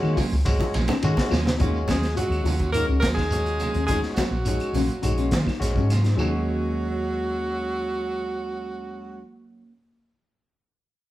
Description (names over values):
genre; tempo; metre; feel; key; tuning
afrobeat; 105 BPM; 4/4; straight; Eb minor; A4 = 440 Hz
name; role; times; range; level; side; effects
bright alto saxophone; melody; 0.0-9.2 s; Gb4 to Bb4; -29 LUFS; right 2 dB; none
edgy tenor saxophone; second line; 0.0-9.2 s; Gb3 to Bb3; -36 LUFS; right 2 dB; none
barky tine electric piano; accompaniment; 0.0-9.2 s; Ab3 to Gb4; -32 LUFS; left 1 dB; overdrive
felt-muted upright piano; arpeggios; 0.0-6.3 s; Db4 to Gb4; -31 LUFS; left 7 dB; none
clean electric guitar; stabs; 0.0-9.8 s; Gb3 to F4; -32 LUFS; right 3 dB; none
hollow-body short-scale fingered electric bass; bass; 0.0-9.2 s; Bb1 to Eb3; -25 LUFS; equal; none
claves; percussion; 0.0-6.3 s; none; -43 LUFS; left 2 dB; none
congas; percussion; 0.0-6.3 s; none; -33 LUFS; right 2 dB; none
shekere; percussion; 0.0-6.3 s; none; -34 LUFS; right 1 dB; none
crunchy breakbeat drum kit; drums; 0.2-6.2 s; hi-hat, kick drum, ride cymbal, snare drum; -27 LUFS; equal; none
room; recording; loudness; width
light reverb; band playing live in one room; -21 LUFS; side -15 dB against mid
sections
0.0-1.6 A section; 1.6-6.2 B section; 6.2-8.5 C section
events
drum fill 0.5-1.6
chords
0.0 Ebm9; 6.2 Ebm7